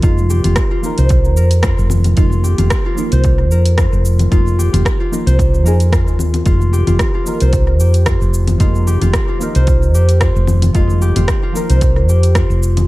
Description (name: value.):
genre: organic downtempo.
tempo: 112 BPM.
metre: 4/4.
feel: swing 55% on 16ths.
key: F minor.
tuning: A4 = 438 Hz.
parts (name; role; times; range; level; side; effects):
deep mellow chord stab; accompaniment; 0.0-12.9 s; F3 to Bb4; -25 LUFS; right 1 dB; chorus, phaser, sidechain pumping, analog delay.
concert harp; arpeggios; 0.0-12.9 s; F4 to C5; -21 LUFS; left 1 dB; analog delay.
woody fretless electric bass; bass; 0.0-12.8 s; F1 to F2; -12 LUFS; equal; sidechain pumping.
deep house drum kit; drums; 0.0-12.9 s; congas, hi-hat, rim click, shaker; -22 LUFS; left 2 dB; overdrive, studio ambience, analog delay.
electronic kick drum; drums; 0.0-12.5 s; none; -16 LUFS; equal; overdrive, studio ambience.
room: little or no reverb.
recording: echo-heavy mix.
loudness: -11 LUFS.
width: side -18 dB against mid.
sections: 0.0-12.9 A section.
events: none.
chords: 0.0 Fm7.